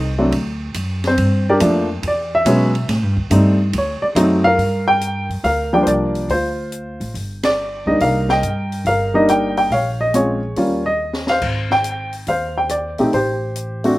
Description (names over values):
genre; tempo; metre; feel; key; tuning
jazz piano trio; 141 BPM; 4/4; swing 67% on 8ths; G minor; A4 = 440 Hz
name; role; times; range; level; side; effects
upright bass; bass; 0.0-13.9 s; G1 to B2; -22 LUFS; equal; none
warm baby grand piano; melody; 0.2-14.0 s; F3 to G5; -16 LUFS; equal; slapback echo
open jazz drum kit; drums; 0.3-13.9 s; crash cymbal, hi-hat, kick drum, ride cymbal, rim click, snare drum; -29 LUFS; equal; none
room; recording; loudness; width
little or no reverb; recorded outdoors, with no room sound; -15 LUFS; side -17 dB against mid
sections
0.0-4.6 A section; 4.6-14.0 B section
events
grand piano solo 0.0-4.6; band accent 7.4; drum fill 11.0-11.4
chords
0.3 D7; 1.2 Gm7; 2.0 E; 2.9 Am7b5; 3.7 D7b9; 4.6 Gm7; 6.3 Dm7; 7.1 G5; 8.0 Cm7; 9.7 Bbm7; 10.6 Eb7; 11.4 Ab; 13.1 Am7